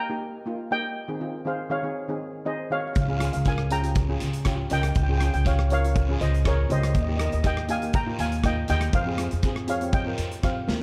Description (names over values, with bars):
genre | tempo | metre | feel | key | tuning
calypso | 120 BPM | 4/4 | straight | unclear | A4 = 438 Hz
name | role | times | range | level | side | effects
steel pan | melody | 0.0-10.8 s | Bb4 to Bb5 | -32 LUFS | equal | none
steel pan | accompaniment | 0.1-10.8 s | Eb3 to Bb4 | -34 LUFS | equal | none
upright bass | bass | 3.0-10.8 s | Db2 to F2 | -28 LUFS | equal | none
big rock drum kit | drums | 3.0-10.8 s | hi-hat, kick drum, rim click, snare drum | -30 LUFS | equal | none
guiro | percussion | 3.0-10.8 s | none | -43 LUFS | equal | none
room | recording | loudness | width
light reverb | dark, warm production | -25 LUFS | mono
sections
0.0-10.8 A section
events
none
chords
0.0 Eb; 1.0 Ab6/Eb; 3.0 Db6; 6.9 Eb; 8.9 Fm7